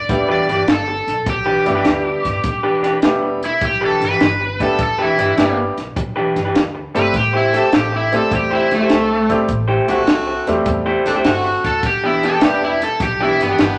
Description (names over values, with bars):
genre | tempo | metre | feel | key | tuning
electric blues shuffle | 102 BPM | 4/4 | swing 68% on 8ths | E minor | A4 = 440 Hz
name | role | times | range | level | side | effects
overdriven slide guitar | melody | 0.0-13.8 s | A3 to D5 | -21 LUFS | equal | none
bright upright piano | accompaniment | 0.1-12.8 s | G3 to G4 | -23 LUFS | equal | none
upright bass | bass | 0.1-13.8 s | E1 to E2 | -30 LUFS | equal | none
compact cocktail drum kit | drums | 0.1-13.8 s | hi-hat, kick drum, snare drum | -22 LUFS | equal | none
electric guitar through a small old amp | riff | 0.3-13.6 s | E3 to C5 | -22 LUFS | equal | none
clear horn section | stabs | 7.5-13.8 s | A3 to A4 | -24 LUFS | equal | none
room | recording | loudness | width
wet large studio reverb, RT60 1.3 s | none | -17 LUFS | mono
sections
0.0-13.8 A section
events
electric slide guitar solo 0.0-13.8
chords
0.0 Em7; 7.1 Am7; 11.8 Em7